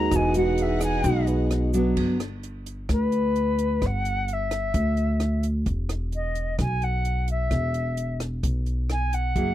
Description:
bossa nova; 130 BPM; 4/4; straight; A4 = 439 Hz
bright reedy concert flute; melody; 0.0-9.5 s; B4 to A#5; -28 LUFS; left 2 dB
nylon-string guitar; accompaniment; 0.0-2.2, 9.4-9.5 s; B2 to G#4; -24 LUFS; right 1 dB
warm grand piano; accompaniment; 0.0-2.0 s; F#4 to D#5; -30 LUFS; right 3 dB
warm chamber string section; sustained chords; 0.0-1.9 s; B#3 to F#5; -33 LUFS; equal
upright bass; bass; 0.0-9.5 s; E1 to D2; -25 LUFS; equal
compact cocktail drum kit; drums; 0.1-9.5 s; crash cymbal, hi-hat, kick drum, rim click; -31 LUFS; equal
egg shaker; percussion; 0.1-2.0 s; -43 LUFS; right 8 dB
small room ambience; dry, close 1970s-style studio recording; -22 LUFS; side -13 dB against mid
0.0-2.0 A section; 2.0-9.5 B section
flute solo 0.0-2.0
0.1 Emaj9; 2.0 G; 5.7 E5
| 0.12 0.58 1.04 1.50 | 1.97 2.43 2.89 3.35 | 3.81 4.28 4.74 5.20 | 5.66 6.12 6.58 7.05 | 7.51 7.97 8.43 8.89 | 9.35

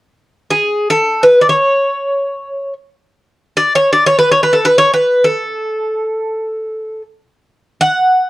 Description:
greek folk; free time; A major; A4 = 441 Hz
Greek bouzouki; melody; 0.5-8.3 s; G#4 to F#5; -11 LUFS; equal
light reverb; worn, warbling old tape, cassette tape, warbly pitch drift; -11 LUFS; side -17 dB against mid
0.1-8.3 A section
free time

